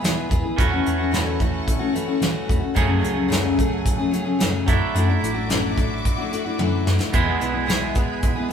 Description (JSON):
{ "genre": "folk rock and heartland rock", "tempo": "110 BPM", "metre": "4/4", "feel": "straight", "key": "unclear", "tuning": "A4 = 440 Hz", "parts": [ { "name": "picked steel-string acoustic guitar", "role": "accompaniment", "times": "0.0-8.5 s", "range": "F#2 to G#4", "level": "-23 LUFS", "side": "left 3 dB", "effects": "none" }, { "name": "rich studio string section", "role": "sustained chords", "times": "0.0-8.5 s", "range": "F#4 to D6", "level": "-34 LUFS", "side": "left 1 dB", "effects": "none" }, { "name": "twangy electric guitar", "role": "riff", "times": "0.0-8.5 s", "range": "E2 to G#4", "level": "-27 LUFS", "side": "right 5 dB", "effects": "spring reverb" }, { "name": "hollow-body short-scale picked electric bass", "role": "bass", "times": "0.0-8.2 s", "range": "A1 to F#3", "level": "-26 LUFS", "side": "equal", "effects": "none" }, { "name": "soft brush drum kit", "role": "drums", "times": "0.0-8.5 s", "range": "hi-hat, kick drum, snare drum, toms", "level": "-23 LUFS", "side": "right 1 dB", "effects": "none" } ], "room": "moderate studio reverb, RT60 0.9 s", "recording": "band playing live in one room", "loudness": "-19 LUFS", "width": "side -8 dB against mid", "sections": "0.0-8.5 A section", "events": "drum fill 6.6-7.1", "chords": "0.0 E; 0.6 A6/E; 2.8 F#madd9; 4.7 Dadd9; 7.1 E", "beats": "0.03 | 0.58 1.13 1.67 2.22 | 2.77 3.31 3.86 4.41 | 4.95 5.50 6.05 6.59 | 7.14 7.69 8.23" }